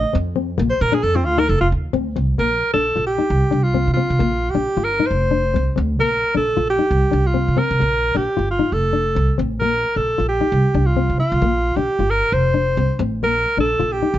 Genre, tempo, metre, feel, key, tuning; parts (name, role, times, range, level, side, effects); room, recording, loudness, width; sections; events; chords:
highlife guitar band; 133 BPM; 4/4; swing 54% on 16ths; Bb major; A4 = 440 Hz
clear alto saxophone; melody; 0.0-14.2 s; C4 to Eb5; -19 LUFS; right 1 dB
nylon-string guitar; accompaniment; 0.0-14.2 s; Bb3 to F4; -23 LUFS; left 7 dB
upright bass; bass; 0.0-14.2 s; F1 to C3; -20 LUFS; right 1 dB
light reverb; nothing above 7.8 kHz; -16 LUFS; side -13 dB against mid
0.0-2.4 A section; 2.4-14.2 B section
alto saxophone solo 0.0-2.4
0.0 Cm; 0.6 Bb; 1.5 F5; 2.4 Bb; 3.3 C5; 4.2 Bb; 5.1 F5; 6.0 Bb; 6.9 C5; 7.8 Bb; 8.7 F; 9.6 Bb5; 10.5 C5; 11.4 Bb; 12.3 F; 13.2 Bb